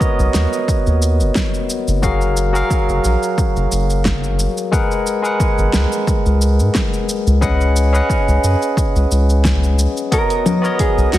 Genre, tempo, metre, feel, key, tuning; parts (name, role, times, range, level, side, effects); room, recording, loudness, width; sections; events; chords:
sunset chillout; 89 BPM; 4/4; swing 54% on 16ths; B lydian; A4 = 440 Hz
barky tine electric piano; accompaniment; 0.0-11.2 s; F#3 to F#5; -19 LUFS; moving between left 5 dB and right 3 dB; auto-pan, ping-pong delay
Celtic harp; arpeggios; 0.0-1.6 s; barely audible
deep house drum kit; drums; 0.0-11.2 s; congas, hi-hat, shaker, snare drum; -23 LUFS; left 1 dB; overdrive
electronic kick drum; drums; 0.0-10.9 s; -19 LUFS; equal; overdrive
round analog bass; bass; 0.2-11.2 s; F#1 to G#2; -15 LUFS; equal
mellow electric guitar; melody; 10.1-11.2 s; F#4 to A#4; -19 LUFS; right 3 dB
light reverb; heavily compressed radio sound, multiband compression; -14 LUFS; side -14 dB against mid
0.0-11.2 A section
0.0 Bmaj9; 2.0 F#maj7; 4.7 G#m7; 7.4 C#7sus4; 10.1 Bmaj9